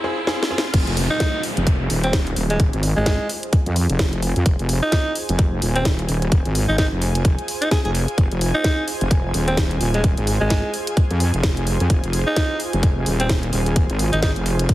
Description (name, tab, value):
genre	bass house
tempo	129 BPM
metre	4/4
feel	swing 58% on 16ths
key	F minor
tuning	A4 = 440 Hz
part	clear grand piano	stabs	0.0-0.6 s	C4 to Ab4	-26 LUFS	equal	sidechain pumping, tape echo
part	riser, downlifter and swell	sound effects	0.0-4.5, 14.7 s	none	-30 LUFS	left 2 dB	none
part	garage drum kit	drums	0.3-14.7 s	crash cymbal, hi-hat, snare drum	-26 LUFS	equal	studio reverb
part	wobble bass	bass	0.7-14.7 s	Eb1 to F2	-20 LUFS	equal	chorus, overdrive, sidechain pumping
part	electronic kick drum	drums	0.7-14.7 s	none	-18 LUFS	equal	studio reverb
part	airy breathy pad	texture	0.7-14.7 s	F4 to Ab5	-29 LUFS	right 1 dB	chorus, sidechain pumping
part	breathy alto saxophone	melody	1.1-14.3 s	Ab3 to Ab4	-25 LUFS	right 1 dB	tape echo
room	digital ambience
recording	heavily compressed radio sound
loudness	-17 LUFS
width	side -16 dB against mid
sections	0.7-14.7 A section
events	break 0.0-0.7; riser 0.0-0.7; drum fill 0.3-0.7; drop 0.7-14.7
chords	0.0 Fm